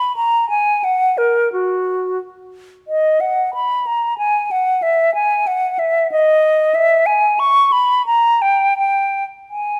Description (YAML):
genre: classical, baroque-style fantasia for unaccompanied flute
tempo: 82-95 BPM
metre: 3/4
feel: rubato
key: unclear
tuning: A4 = 440 Hz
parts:
  - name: silver concert flute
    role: solo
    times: 0.0-9.8 s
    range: F#4 to C#6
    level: -16 LUFS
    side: equal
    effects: none
room: moderate recital hall reverb, RT60 1.6 s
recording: none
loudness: -16 LUFS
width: mono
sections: 0.0-9.8 A section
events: none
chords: none